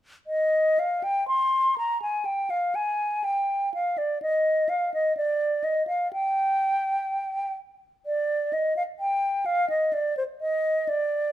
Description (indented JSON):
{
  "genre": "classical, baroque-style fantasia for unaccompanied flute",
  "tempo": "62 BPM",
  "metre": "4/4",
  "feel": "rubato",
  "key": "unclear",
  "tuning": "A4 = 442 Hz",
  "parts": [
    { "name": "hollow concert flute", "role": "solo", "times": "0.3-11.3 s", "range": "C5 to C6", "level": "-23 LUFS", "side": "equal", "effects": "none" }
  ],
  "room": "moderate large studio reverb, RT60 1.2 s",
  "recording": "minimal, uncompressed stereo recording",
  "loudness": "-23 LUFS",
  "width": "side -13 dB against mid",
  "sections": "0.3-11.3 A section",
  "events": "none",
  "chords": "none",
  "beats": "| 0.27 1.27 2.25 3.23 | 4.21 5.17 6.12 7.09 | 8.05 9.00 9.93 10.88"
}